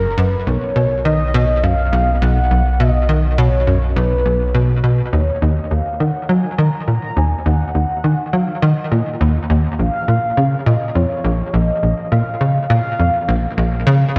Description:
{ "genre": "ambient, sequencer-driven space music", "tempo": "103 BPM", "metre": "4/4", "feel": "straight", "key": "Eb minor", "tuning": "A4 = 438 Hz", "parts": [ { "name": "mellow horn-like synth lead", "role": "melody", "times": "0.0-13.5 s", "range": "Bb4 to Bb5", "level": "-24 LUFS", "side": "equal", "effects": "chorus, tape echo" }, { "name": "tight sequencer bass", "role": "riff", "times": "0.0-14.2 s", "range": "Bb1 to Gb3", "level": "-18 LUFS", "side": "equal", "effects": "lush chorus, tape echo" }, { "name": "warm sub bass", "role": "bass", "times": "0.0-5.1 s", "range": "Gb1 to B1", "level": "-21 LUFS", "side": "equal", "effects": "none" } ], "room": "wet concert hall reverb, RT60 2.4 s", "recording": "dark, warm production", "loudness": "-17 LUFS", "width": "mono", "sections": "0.0-5.1 A section; 5.1-14.2 B section", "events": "none", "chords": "0.5 Badd9; 5.1 Ebm; 9.8 Bbsus4" }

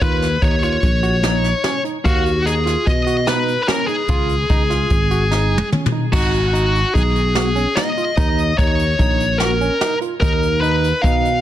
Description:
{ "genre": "progressive instrumental, band music in an uneven meter", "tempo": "147 BPM", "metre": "5/4", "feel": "straight", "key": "G# dorian", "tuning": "A4 = 440 Hz", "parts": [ { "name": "high-gain lead guitar", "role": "melody", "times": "0.0-11.4 s", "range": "F#4 to E#5", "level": "-19 LUFS", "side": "left 2 dB", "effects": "distortion, plate reverb, tape echo" }, { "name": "barky tine electric piano", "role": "arpeggios", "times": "0.0-11.3 s", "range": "C#4 to E#5", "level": "-26 LUFS", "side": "right 4 dB", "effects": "auto-pan, plate reverb" }, { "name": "sustaining fretless electric bass", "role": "bass", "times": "0.0-11.4 s", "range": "G#1 to B2", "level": "-20 LUFS", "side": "equal", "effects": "lush chorus" }, { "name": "jazz brush drum kit", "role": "drums", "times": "0.0-11.3 s", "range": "crash cymbal, hi-hat, kick drum, snare drum, toms", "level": "-20 LUFS", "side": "equal", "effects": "soft clipping on snare" } ], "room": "light reverb", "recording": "dense, heavily limited modern master", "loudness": "-15 LUFS", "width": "side -12 dB against mid", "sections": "0.0-6.1 A section; 6.1-11.4 A section", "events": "drum fill 5.3-6.1", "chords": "0.0 D#7sus2; 2.1 G#m7/D#; 4.1 C#; 6.1 G#m7; 8.2 D#7(no3); 10.2 Bmaj7#11/D#" }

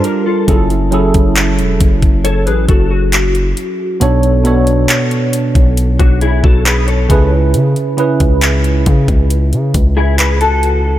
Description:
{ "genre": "contemporary R&B", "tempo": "68 BPM", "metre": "4/4", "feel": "straight", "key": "F# minor", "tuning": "A4 = 439 Hz", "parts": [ { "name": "tine electric piano", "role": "accompaniment", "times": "0.0-11.0 s", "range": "B2 to C#5", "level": "-15 LUFS", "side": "right 2 dB", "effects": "analog chorus" }, { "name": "mellow electric guitar", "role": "arpeggios", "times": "0.0-11.0 s", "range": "D4 to C#5", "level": "-18 LUFS", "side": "left 3 dB", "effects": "ensemble chorus" }, { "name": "trap drum kit", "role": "drums", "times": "0.0-10.8 s", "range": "handclaps, hi-hat, kick drum", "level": "-14 LUFS", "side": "equal", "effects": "none" }, { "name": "long sustained 808-style bass", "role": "bass", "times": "0.5-11.0 s", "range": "E1 to C#3", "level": "-14 LUFS", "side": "equal", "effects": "none" } ], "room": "digital ambience", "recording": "none", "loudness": "-10 LUFS", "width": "side -13 dB against mid", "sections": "0.0-11.0 A section", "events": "none", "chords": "0.5 F#m9; 4.0 Bm9; 7.1 C#m7" }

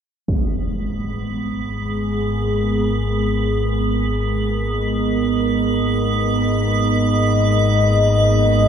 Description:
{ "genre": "dark ambient drone", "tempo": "free time", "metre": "none", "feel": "none", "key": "G# minor", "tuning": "A4 = 440 Hz", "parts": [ { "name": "dark analog pad", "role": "sustained chords", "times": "0.3-8.7 s", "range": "G#3 to D#5", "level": "-20 LUFS", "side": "left 2 dB", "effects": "chorus" }, { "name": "deep rumbling drone", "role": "drone", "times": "1.3-8.7 s", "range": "G#1 to G#2", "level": "-21 LUFS", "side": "left 1 dB", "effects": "built-in reverb" }, { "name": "impact", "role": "percussion", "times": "0.3-0.5 s", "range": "none", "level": "-25 LUFS", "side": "equal", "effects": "low-pass filter on sfx" }, { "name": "icy glass pad", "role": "texture", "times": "1.0-8.7 s", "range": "B3", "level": "-22 LUFS", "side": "right 7 dB", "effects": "chorus, built-in reverb" } ], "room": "wet cathedral reverb, RT60 6.0 s", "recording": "none", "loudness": "-17 LUFS", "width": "side -8 dB against mid", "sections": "0.3-8.7 A section", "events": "none", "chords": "0.3 G#madd9" }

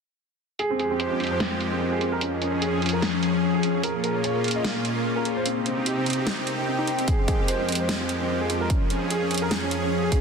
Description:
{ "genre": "heavy wobble dubstep", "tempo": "148 BPM", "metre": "4/4", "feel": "swing 55% on 16ths, half-time", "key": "F minor", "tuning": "A4 = 441 Hz", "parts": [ { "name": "warm concert grand piano", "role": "melody", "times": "0.6-10.2 s", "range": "Bb3 to Eb5", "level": "-27 LUFS", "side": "right 2 dB", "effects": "digital delay" }, { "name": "supersaw pad", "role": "sustained chords", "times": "0.6-10.2 s", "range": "F2 to Ab4", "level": "-28 LUFS", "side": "right 1 dB", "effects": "sidechain pumping" }, { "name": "dubstep drum kit", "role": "drums", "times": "0.6-10.2 s", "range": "hi-hat, snare drum", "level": "-29 LUFS", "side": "right 1 dB", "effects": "low-pass filter on hats, low-pass filter on snare" }, { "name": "warbly tape-like pad", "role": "texture", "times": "1.2-10.2 s", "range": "F3 to G5", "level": "-28 LUFS", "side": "left 4 dB", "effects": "chorus, built-in reverb, sidechain pumping" }, { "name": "electronic kick drum", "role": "drums", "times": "7.1-10.2 s", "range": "none", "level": "-23 LUFS", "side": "equal", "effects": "none" } ], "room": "moderate lush hall reverb, RT60 1.9 s", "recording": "dense, heavily limited modern master", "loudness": "-22 LUFS", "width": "side -5 dB against mid", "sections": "0.6-10.2 A section", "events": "none", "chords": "0.6 Fmadd9; 2.2 Db/F; 3.8 Bbm; 5.5 Cm; 7.1 Fmadd9; 8.7 Db/F" }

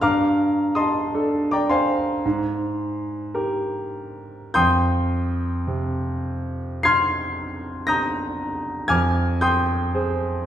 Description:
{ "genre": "classical, impressionist solo piano", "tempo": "46-60 BPM", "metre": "4/4", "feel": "rubato", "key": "F dorian", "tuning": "A4 = 440 Hz", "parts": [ { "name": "bright concert grand piano", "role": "solo", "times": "0.0-10.5 s", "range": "F2 to C7", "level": "-20 LUFS", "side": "equal", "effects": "none" } ], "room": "wet recital hall reverb, RT60 1.5 s", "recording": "heard from further back in the room", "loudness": "-20 LUFS", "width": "side -10 dB against mid", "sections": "0.0-10.5 A section", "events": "none", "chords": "0.0 Gm11; 2.2 Abmaj9; 4.6 Fm11; 8.9 Abmaj7/F" }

